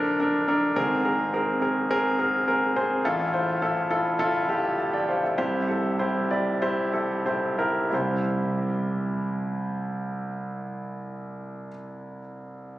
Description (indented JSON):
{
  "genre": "pop",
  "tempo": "89-105 BPM",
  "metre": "4/4",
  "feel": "straight",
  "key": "C mixolydian",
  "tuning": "A4 = 441 Hz",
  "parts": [
    { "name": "clear concert grand piano", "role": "solo", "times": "0.0-12.8 s", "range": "Ab1 to A5", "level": "-24 LUFS", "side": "equal", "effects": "digital delay" }
  ],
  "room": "moderate concert hall reverb, RT60 2.0 s",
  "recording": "recorded on a phone in the room, club reverb, compression",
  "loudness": "-23 LUFS",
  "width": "side -15 dB against mid",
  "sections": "0.0-7.9 A section; 7.9-10.6 B section",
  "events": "slowing down 3.0-7.9",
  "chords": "0.0 Bbmaj7; 0.8 Abadd9; 3.0 Fmaj7/A; 5.4 C"
}